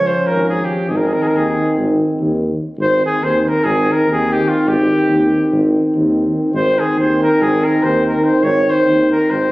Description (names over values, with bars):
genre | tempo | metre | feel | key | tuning
balkan folk, Balkan brass band | 287 BPM (eighths) | 9/8 | straight | Ab major | A4 = 440 Hz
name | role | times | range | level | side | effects
clear flugelhorn | melody | 0.0-9.5 s | F4 to Db5 | -17 LUFS | equal | none
breathy trombone | accompaniment | 0.0-9.5 s | C4 to Db4 | -21 LUFS | left 2 dB | none
mellow euphonium | accompaniment | 0.0-9.5 s | Eb3 to F3 | -18 LUFS | right 1 dB | none
mellow tuba | bass | 0.0-9.5 s | Ab1 to Eb2 | -20 LUFS | equal | none
room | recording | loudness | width
wet recital hall reverb, RT60 1.3 s | recorded on a phone in the room, studio reverb, nothing above 10.4 kHz | -13 LUFS | side -19 dB against mid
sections
0.0-2.8 A section; 2.8-9.5 A section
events
none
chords
0.0 Db; 0.9 Ab